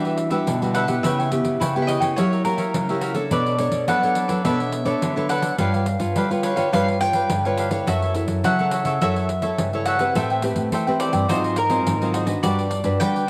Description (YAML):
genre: samba and choro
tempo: 105 BPM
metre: 4/4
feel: straight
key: unclear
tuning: A4 = 438 Hz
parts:
  - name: mandolin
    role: second line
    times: 0.0-13.3 s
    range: A#4 to G5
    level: -27 LUFS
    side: equal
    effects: cassette tape
  - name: cavaquinho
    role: accompaniment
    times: 0.0-13.3 s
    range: D4 to G5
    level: -29 LUFS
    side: equal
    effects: cassette tape
  - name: nylon-string guitar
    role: accompaniment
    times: 0.0-13.3 s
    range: G#2 to C#5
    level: -27 LUFS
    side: equal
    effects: cassette tape
  - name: nylon-string guitar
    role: bass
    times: 0.0-13.3 s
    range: F#2 to B3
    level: -29 LUFS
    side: equal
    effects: none
  - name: pandeiro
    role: percussion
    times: 0.1-13.3 s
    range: none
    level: -31 LUFS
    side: equal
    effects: none
room: moderate lush hall reverb, RT60 2.6 s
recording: home recording on cassette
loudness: -21 LUFS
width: mono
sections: 0.0-13.3 A section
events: mandolin solo 0.0-13.3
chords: 0.0 Em9; 1.0 C#m7b5; 2.2 F#7b9; 3.3 Bm9; 5.6 G7#11; 7.9 F#m7; 10.2 Am9; 11.3 G#13; 12.4 Gmaj7